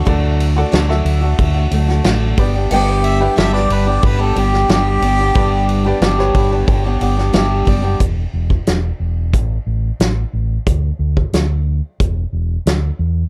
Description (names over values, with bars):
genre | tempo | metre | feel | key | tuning
folk rock and heartland rock | 90 BPM | 4/4 | straight | unclear | A4 = 440 Hz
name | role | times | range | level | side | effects
picked steel-string acoustic guitar | accompaniment | 0.0-8.0 s | G2 to G4 | -21 LUFS | equal | none
bright upright piano | accompaniment | 0.1-8.0 s | F#4 to B5 | -26 LUFS | equal | plate reverb
fingered electric bass | bass | 0.1-13.2 s | E1 to E2 | -19 LUFS | equal | none
natural country drum kit | drums | 0.1-12.8 s | crash cymbal, hi-hat, kick drum, ride cymbal, snare drum | -20 LUFS | equal | none
warm harmonica | second line | 2.7-6.0 s | G4 to G5 | -22 LUFS | equal | none
room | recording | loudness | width
little or no reverb | dark, warm production | -16 LUFS | mono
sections
0.0-8.0 A section; 8.0-13.3 B section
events
upright piano fill 6.0-8.0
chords
0.0 D; 2.4 G; 8.0 N.C.; 12.0 Dsus2/E